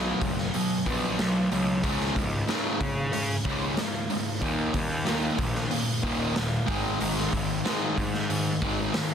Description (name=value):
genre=quiet-loud alternative rock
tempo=93 BPM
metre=4/4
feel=straight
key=unclear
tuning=A4 = 438 Hz
part: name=fuzz guitar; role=riff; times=0.0-9.1 s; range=Db2 to Cb4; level=-27 LUFS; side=equal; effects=distortion
part: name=fuzz picked electric bass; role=bass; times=0.0-8.9 s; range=Eb1 to Db3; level=-31 LUFS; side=equal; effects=overdrive
part: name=raw garage drum kit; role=drums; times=0.2-9.1 s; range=hi-hat, kick drum, snare drum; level=-30 LUFS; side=equal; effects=none
room=light reverb, small room ambience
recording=dense, heavily limited modern master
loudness=-24 LUFS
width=side -8 dB against mid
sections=0.0-9.1 A section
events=none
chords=0.0 Cb5; 1.8 Db5; 4.4 Eb5; 6.7 Ab5